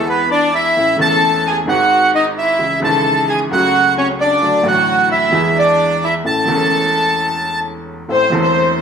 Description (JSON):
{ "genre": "tango", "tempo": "131 BPM", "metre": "4/4", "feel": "rubato", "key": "A major", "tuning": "A4 = 440 Hz", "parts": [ { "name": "bandoneon", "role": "melody", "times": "0.0-7.6 s", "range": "B4 to A5", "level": "-14 LUFS", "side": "right 2 dB", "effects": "none" }, { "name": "warm studio violin section", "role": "second line", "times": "0.0-8.8 s", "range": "B3 to C5", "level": "-18 LUFS", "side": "left 2 dB", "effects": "none" }, { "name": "bright upright piano", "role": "accompaniment", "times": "0.0-8.8 s", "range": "E1 to A4", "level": "-19 LUFS", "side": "equal", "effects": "none" } ], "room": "moderate large studio reverb, RT60 0.9 s", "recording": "band playing live in one room", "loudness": "-12 LUFS", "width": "side -7 dB against mid", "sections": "0.0-8.1 A section", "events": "none", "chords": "0.0 E; 0.8 A; 1.7 G#7; 2.6 C#m; 3.5 F#m/C#; 4.4 D; 5.3 E; 6.2 A; 8.1 Am" }